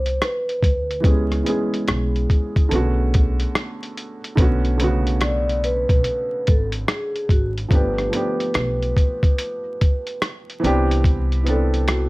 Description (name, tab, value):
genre	lo-fi hip hop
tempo	72 BPM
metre	4/4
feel	swing 64% on 16ths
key	B dorian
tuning	A4 = 440 Hz
part	vibraphone with soft mallets	melody	0.0-12.1 s	F#4 to D5	-26 LUFS	equal	low-pass filter
part	felt-muted upright piano	accompaniment	0.0-12.1 s	C#3 to A4	-24 LUFS	right 1 dB	low-pass filter
part	upright bass	bass	0.0-12.1 s	G1 to D2	-22 LUFS	equal	none
part	lo-fi sampler-style drum kit	drums	0.1-12.1 s	hi-hat, kick drum, rim click	-19 LUFS	equal	vintage 12-bit sampler grit
room	light reverb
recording	vinyl crackle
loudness	-18 LUFS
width	side -21 dB against mid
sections	0.0-4.4 A section; 4.4-12.1 A section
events	none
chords	0.0 Cmaj7; 1.0 C#m7; 2.7 Bm7; 4.4 Bm9; 7.7 G7; 10.6 Cmaj7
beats	0.21 | 1.04 1.88 2.71 3.54 | 4.38 5.21 6.04 6.88 | 7.71 8.54 9.38 10.21 | 11.04 11.88